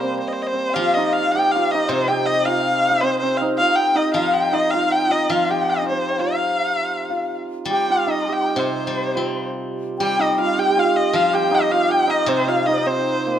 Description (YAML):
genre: chinese traditional, Chinese chamber ensemble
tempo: 105 BPM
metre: 4/4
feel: rubato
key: C yu mode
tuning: A4 = 440 Hz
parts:
  - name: warm erhu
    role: melody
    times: 0.0-13.4 s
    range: C5 to G5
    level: -21 LUFS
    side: equal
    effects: none
  - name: hammered dulcimer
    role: second line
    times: 0.0-13.4 s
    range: G3 to G4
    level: -22 LUFS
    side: right 5 dB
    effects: none
  - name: low xiao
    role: second line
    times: 0.0-13.4 s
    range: G4 to C6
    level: -24 LUFS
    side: left 5 dB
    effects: none
  - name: steel-string zither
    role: accompaniment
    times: 0.0-13.4 s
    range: C3 to C4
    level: -27 LUFS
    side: left 4 dB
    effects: none
room: moderate recital hall reverb, RT60 1.4 s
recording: close, detailed microphones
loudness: -17 LUFS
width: side -10 dB against mid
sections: 0.0-13.4 A section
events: none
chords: none